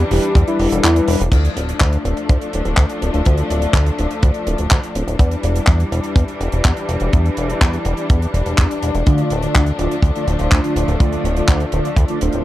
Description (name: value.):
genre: italo disco.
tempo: 124 BPM.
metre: 4/4.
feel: straight.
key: D minor.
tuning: A4 = 442 Hz.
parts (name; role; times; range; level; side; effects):
rich studio string section; sustained chords; 0.0-12.4 s; E3 to D4; -23 LUFS; left 2 dB; none.
chorused synth bass; bass; 0.0-12.4 s; D1 to E2; -19 LUFS; equal; none.
soft octave-layered synth lead; melody; 0.1-1.2 s; E4 to G4; -20 LUFS; left 2 dB; chorus, tape echo.
mellow synth brass; stabs; 0.1-1.2, 9.1-12.4 s; D3 to D5; -22 LUFS; equal; chorus, tape echo.
tight funk drum kit; drums; 0.1-12.4 s; crash cymbal, handclaps, hi-hat; -23 LUFS; equal; none.
kick drum; drums; 0.4-12.1 s; none; -14 LUFS; equal; none.
room: little or no reverb.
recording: dry, close 1970s-style studio recording.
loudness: -14 LUFS.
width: side -15 dB against mid.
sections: 0.0-1.3 A section; 1.3-12.4 B section.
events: kick drops out 0.8-1.3.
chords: 0.0 Em7; 1.3 Dm; 5.2 Em7; 9.1 Dm.